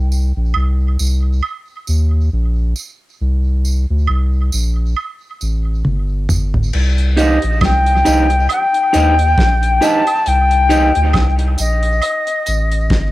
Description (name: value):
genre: dub reggae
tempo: 68 BPM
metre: 4/4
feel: swing 57% on 16ths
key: C dorian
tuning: A4 = 440 Hz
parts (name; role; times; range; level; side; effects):
- soft dub sub bass; bass; 0.0-13.1 s; G1 to Eb2; -15 LUFS; equal; transformer saturation
- tambourine and woodblock; percussion; 0.1-12.7 s; none; -25 LUFS; right 6 dB; tape echo
- damped 70s drum kit; drums; 5.8-13.1 s; crash cymbal, hi-hat, kick drum, snare drum, toms; -19 LUFS; equal; cassette tape, tape echo
- silver concert flute; melody; 7.2-13.1 s; Eb5 to A5; -16 LUFS; left 3 dB; low-pass filter, cassette tape, tape echo
- electric guitar at the edge of break-up; accompaniment; 7.2-10.9 s; Eb4 to Eb5; -18 LUFS; right 3 dB; low-pass filter, cassette tape, tape echo
room: light reverb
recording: home recording on cassette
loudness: -13 LUFS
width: side -16 dB against mid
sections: 0.0-6.7 A section; 6.7-13.1 B section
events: break 0.0-6.7; drum fill 5.8-6.7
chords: 0.0 Cm; 3.2 C5; 6.7 Cm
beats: 0.55 1.43 2.32 | 3.20 4.08 4.96 5.85 | 6.73 7.61 8.49 9.38 | 10.26 11.14 12.02 12.91